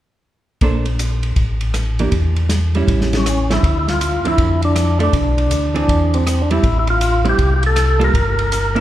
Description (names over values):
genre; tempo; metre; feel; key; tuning
soul jazz organ trio; 160 BPM; 4/4; swing 65% on 8ths; D minor; A4 = 440 Hz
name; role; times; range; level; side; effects
vintage hollow-body jazz guitar; accompaniment; 0.6-8.8 s; D3 to C5; -22 LUFS; right 3 dB; none
mellow tonewheel organ; bass; 0.6-8.8 s; G1 to F2; -18 LUFS; equal; slow rotary speaker
warm soul drum kit; drums; 0.6-8.8 s; hi-hat, kick drum, ride cymbal, rim click, snare drum; -21 LUFS; equal; none
percussive tonewheel organ; melody; 3.2-8.8 s; B#3 to Bb4; -18 LUFS; equal; slow rotary speaker
room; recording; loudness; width
moderate church reverb, RT60 3.0 s; recorded in a church or concert hall; -14 LUFS; side -13 dB against mid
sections
0.6-3.6 A section; 3.6-8.8 B section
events
none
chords
0.6 Bbmaj9; 1.4 A5; 2.1 Em6; 2.9 A7; 3.6 Dm9; 5.1 Bmadd11; 5.9 E7alt; 6.6 Am7; 8.1 Gm